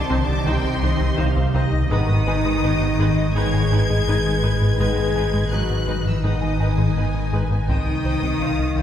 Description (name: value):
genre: cinematic, hybrid orchestral and electronic film score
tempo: 83 BPM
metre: 4/4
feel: straight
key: unclear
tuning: A4 = 440 Hz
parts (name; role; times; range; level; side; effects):
- warm symphonic violin section; melody; 0.0-8.8 s; C6 to G#6; -29 LUFS; left 2 dB; none
- warm symphonic violin section; second line; 0.0-8.8 s; B4 to A5; -32 LUFS; left 2 dB; none
- granular cloud pad; sustained chords; 0.0-8.8 s; Eb3 to Eb5; -27 LUFS; left 1 dB; built-in reverb
- mellow French horn section; sustained chords; 0.0-8.8 s; C4 to G#4; -28 LUFS; left 3 dB; none
- tight sequenced synth; arpeggios; 0.0-8.8 s; C3 to G#4; -32 LUFS; equal; chorus, tape echo
- rubbery square bass; riff; 0.0-8.8 s; C2 to G#2; -24 LUFS; left 1 dB; none
- punchy sub bass; bass; 0.0-8.8 s; G#1 to C2; -27 LUFS; equal; none
- warm studio cello section; bass; 0.0-8.8 s; C3 to G#3; -28 LUFS; right 1 dB; none
- warm symphonic double bass section; bass; 0.0-8.8 s; G#1 to C2; -26 LUFS; right 2 dB; none
- dark studio viola section; accompaniment; 0.1-8.8 s; Eb4 to C5; -32 LUFS; equal; none
- dark trombone section; sustained chords; 0.5-7.9 s; D#3 to C4; -35 LUFS; right 1 dB; none
room: wet scoring stage reverb, RT60 1.6 s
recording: heard from further back in the room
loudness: -18 LUFS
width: side -10 dB against mid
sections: 0.0-8.8 A section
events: none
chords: 0.0 Cm; 1.9 G#m; 7.7 Cm